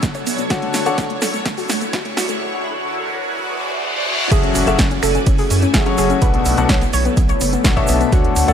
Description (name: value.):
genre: progressive house.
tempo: 126 BPM.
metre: 4/4.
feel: straight.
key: F# minor.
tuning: A4 = 440 Hz.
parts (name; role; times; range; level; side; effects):
shimmering ambient pad; sustained chords; 0.0-8.5 s; D2 to G#5; -24 LUFS; equal; chorus, built-in reverb, phaser, sidechain pumping.
soft round pluck; arpeggios; 0.0-8.5 s; A3 to C#5; -22 LUFS; equal; chorus, sidechain pumping, dub echo.
deep house drum kit; drums; 0.0-8.5 s; crash cymbal, finger snaps, hi-hat, snare drum; -23 LUFS; equal; sidechain pumping on hats, sidechain pumping on cymbals.
dusty soul sampler-style drum kit; drums; 0.0-8.5 s; ride cymbal, snare drum; -34 LUFS; right 3 dB; none.
electronic kick drum; drums; 0.0-8.2 s; none; -17 LUFS; equal; none.
tube shaker; percussion; 0.0-8.5 s; none; -29 LUFS; right 4 dB; none.
riser, reverse cymbal and impact; sound effects; 1.6-6.2 s; none; -27 LUFS; left 2 dB; none.
warm baby grand piano; stabs; 0.5-1.0, 4.3-8.5 s; B2 to F#5; -20 LUFS; left 4 dB; sidechain pumping, low-pass filter, dub echo.
saturated sub bass; bass; 4.3-8.5 s; F#1 to F#2; -21 LUFS; equal; sidechain pumping.
room: light reverb.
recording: high-pass filter.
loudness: -15 LUFS.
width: side -8 dB against mid.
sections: 0.0-4.3 A section; 4.3-8.5 B section.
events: build-up 0.0-4.3; drum fill 0.0-2.4; filter sweep on synth pluck 0.0-4.3; filter sweep 0.0-4.3; riser 1.6-4.3; reverse cymbal 3.4-4.3; drop 4.3-8.5; impact 4.3-6.2.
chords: 0.0 Bm7; 0.5 Dmaj7; 2.4 E7; 4.3 F#m9; 6.2 Bm7.